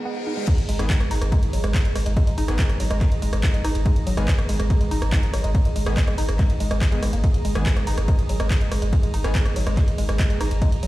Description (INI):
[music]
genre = driving peak-time techno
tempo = 142 BPM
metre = 4/4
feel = straight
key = unclear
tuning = A4 = 439 Hz
[part]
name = reverse cymbal and sub drop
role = sound effects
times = 0.0-2.2 s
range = none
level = -34 LUFS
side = left 1 dB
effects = none
[part]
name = granular cloud pad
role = texture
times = 0.0-10.9 s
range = G#4 to A#5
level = -32 LUFS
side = right 3 dB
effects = built-in reverb, sidechain pumping
[part]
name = woody wave-folded pluck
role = riff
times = 0.1-10.9 s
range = F#3 to D#4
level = -30 LUFS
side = equal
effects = chorus, sidechain pumping, ping-pong delay
[part]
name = electronic kick drum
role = drums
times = 0.5-10.7 s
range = none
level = -20 LUFS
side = equal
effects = none
[part]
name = punchy analog drum machine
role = drums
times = 0.5-10.9 s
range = crash cymbal, handclaps, hi-hat, ride cymbal, rim click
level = -30 LUFS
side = equal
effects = overdrive, sidechain pumping on hats, sidechain pumping on cymbals
[part]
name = saturated sub bass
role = bass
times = 0.6-10.9 s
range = G#1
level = -24 LUFS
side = equal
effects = tube saturation, sidechain pumping, low-pass filter
[part]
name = supersaw stab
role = stabs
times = 0.8-9.4 s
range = D#3 to G#4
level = -36 LUFS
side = equal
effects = none
[sound]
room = little or no reverb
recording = played on a big sound system in a bare room, stone room reverb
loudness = -19 LUFS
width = side -17 dB against mid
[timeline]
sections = 0.5-10.9 A section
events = reverse cymbal 0.0-0.5; drop 0.5-10.9; impact 0.5-2.2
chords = 0.5 G#m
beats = 0.05 | 0.48 0.90 1.32 1.74 | 2.17 2.59 3.01 3.43 | 3.86 4.28 4.70 5.12 | 5.55 5.97 6.39 6.81 | 7.24 7.66 8.08 8.51 | 8.93 9.35 9.77 10.20 | 10.62